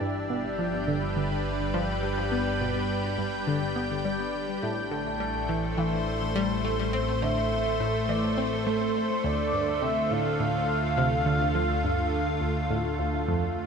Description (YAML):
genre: ambient, sequencer-driven space music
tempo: 104 BPM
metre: 4/4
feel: straight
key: unclear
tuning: A4 = 440 Hz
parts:
  - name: lush unison pad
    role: sustained chords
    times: 0.0-13.7 s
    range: A2 to G5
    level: -29 LUFS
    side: equal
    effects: chorus
  - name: analog pluck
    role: riff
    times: 0.0-13.4 s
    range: D2 to C4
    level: -30 LUFS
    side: equal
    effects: chorus, phaser, ping-pong delay
  - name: fat analog bass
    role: bass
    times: 0.0-13.7 s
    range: G1 to D2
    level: -33 LUFS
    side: equal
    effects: none
  - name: expressive synth lead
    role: melody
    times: 4.6-13.3 s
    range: C5 to A5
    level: -31 LUFS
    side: equal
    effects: lush chorus, cassette tape, ping-pong delay
room: wet plate reverb, RT60 3.3 s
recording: none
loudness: -25 LUFS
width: side -6 dB against mid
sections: 0.0-13.7 A section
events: none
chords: 0.0 G; 4.6 Am; 9.2 Dm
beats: | 0.01 0.59 1.16 1.74 | 2.32 2.90 3.47 4.05 | 4.63 5.20 5.78 6.36 | 6.93 7.51 8.09 8.66 | 9.24 9.82 10.39 10.97 | 11.55 12.13 12.70 13.28